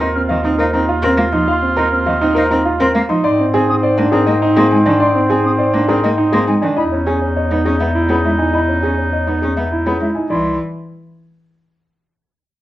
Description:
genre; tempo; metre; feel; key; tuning
classical, minimalist pattern music; 102 BPM; 3/4; straight; unclear; A4 = 440 Hz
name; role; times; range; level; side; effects
warm grand piano; melody; 0.0-10.6 s; Ab4 to C6; -21 LUFS; left 4 dB; none
mellow oboe; second line; 0.0-10.1 s; C4 to F4; -22 LUFS; right 1 dB; none
rich cello; accompaniment; 0.0-10.6 s; Eb3 to Eb4; -20 LUFS; equal; none
warm grand piano; arpeggios; 0.0-10.6 s; C4 to Eb5; -18 LUFS; right 2 dB; none
mellow bass clarinet; bass; 0.0-10.6 s; C2 to Ab2; -19 LUFS; left 1 dB; none
silver concert flute; arpeggios; 0.1-10.6 s; E5 to F6; -24 LUFS; left 1 dB; none
room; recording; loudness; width
moderate large studio reverb, RT60 0.9 s; worn, warbling old tape, cassette tape, warbly pitch drift; -13 LUFS; side -14 dB against mid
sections
0.0-10.3 A section; 10.3-12.1 B section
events
none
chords
0.0 Ebsus2; 3.2 Abadd9; 6.8 Emaj7; 10.3 C

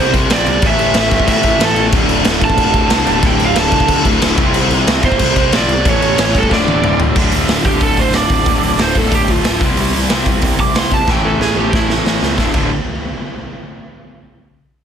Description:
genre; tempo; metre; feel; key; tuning
punk rock; 184 BPM; 4/4; straight; unclear; A4 = 440 Hz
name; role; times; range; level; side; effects
lead guitar through a small cranked amp; melody; 0.0-11.9 s; E4 to D6; -18 LUFS; right 3 dB; overdrive, ping-pong delay
raw garage guitar; riff; 0.0-12.7 s; D2 to C4; -20 LUFS; left 13 dB; overdrive
tight distorted guitar; riff; 0.0-12.7 s; D2 to C4; -20 LUFS; right 15 dB; distortion
fuzz picked electric bass; bass; 0.0-12.7 s; D1 to A2; -20 LUFS; equal; overdrive
raw garage drum kit; drums; 0.1-12.6 s; crash cymbal, hi-hat, kick drum, snare drum, toms; -15 LUFS; equal; none
room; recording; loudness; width
little or no reverb; dense, heavily limited modern master, faint mains hum; -11 LUFS; side -8 dB against mid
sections
0.0-7.2 A section; 7.2-12.4 B section; 12.4-13.7 C section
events
drum fill 6.5-7.2, 11.1-12.4; lead electric guitar solo 7.2-12.4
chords
0.0 C5; 0.6 A5; 1.9 D5; 4.4 C5; 5.8 A; 6.5 D5; 9.6 C5; 11.1 A5; 12.4 D5

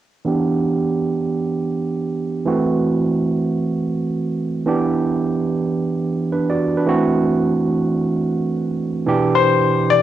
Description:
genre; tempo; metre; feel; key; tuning
R&B; 109 BPM; 4/4; swing 63% on 16ths; E minor; A4 = 439 Hz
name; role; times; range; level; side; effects
barky tine electric piano; accompaniment; 0.2-10.0 s; B2 to D5; -17 LUFS; right 3 dB; overdrive, low-pass filter, cassette tape
bright concert grand piano; melody; 9.4-10.0 s; C5 to D5; -14 LUFS; left 8 dB; none
room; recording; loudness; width
wet studio reverb, RT60 0.6 s; home recording on cassette; -17 LUFS; side -12 dB against mid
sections
0.3-9.1 A section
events
filter sweep on tine electric piano 0.3-9.1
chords
0.3 Em7; 2.5 F#m7b5; 4.7 Em7; 6.9 F#m7b5; 9.1 Em7

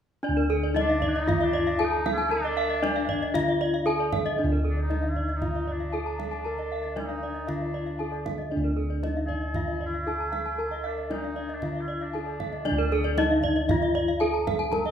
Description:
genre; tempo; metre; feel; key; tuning
Balinese gamelan; 116 BPM; 4/4; straight; D pelog; A4 = 440 Hz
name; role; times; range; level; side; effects
gamelan-type bronze metallophone; melody; 0.2-14.9 s; D4 to Bb4-40c; -29 LUFS; left 1 dB; none
gamelan-type bronze metallophone; arpeggios; 0.2-14.8 s; D5 to Bb5-40c; -32 LUFS; left 3 dB; none
gamelan-type bossed gongs; bass; 0.2-14.9 s; D2 to Bb4-40c; -30 LUFS; equal; none
gamelan-type bronze metallophone; arpeggios; 0.4-14.9 s; A4-45c to E5+50c; -33 LUFS; right 4 dB; none
kendang; percussion; 0.4-14.9 s; none; -34 LUFS; right 2 dB; none
warm oboe; second line; 0.8-13.5 s; D4 to A4-45c; -34 LUFS; equal; none
room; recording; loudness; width
wet recital hall reverb, RT60 1.5 s; minimal, uncompressed stereo recording; -24 LUFS; side -8 dB against mid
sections
0.2-14.9 A section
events
none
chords
none

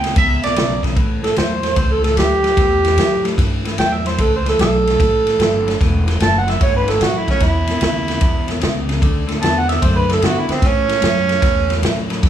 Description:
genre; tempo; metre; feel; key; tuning
electric blues shuffle; 149 BPM; 4/4; swing 67% on 8ths; A mixolydian; A4 = 439 Hz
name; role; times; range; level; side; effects
electric slide guitar; second line; 0.0-0.8 s; D5 to G5; -19 LUFS; right 4 dB; plate reverb
electric guitar at the edge of break-up; riff; 0.0-12.3 s; E2 to B3; -23 LUFS; left 4 dB; spring reverb
upright bass; bass; 0.0-12.3 s; E1 to A2; -21 LUFS; equal; none
vintage drum kit; drums; 0.0-12.3 s; kick drum, ride cymbal, snare drum; -18 LUFS; equal; none
overdriven harmonica; melody; 1.2-11.8 s; C4 to A5; -17 LUFS; right 2 dB; plate reverb
room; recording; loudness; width
light reverb; small room ambience; -14 LUFS; side -10 dB against mid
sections
1.0-12.3 A section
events
harmonica solo 1.0-12.3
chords
0.0 E5; 1.0 A7; 7.4 E5; 9.0 D; 10.6 A

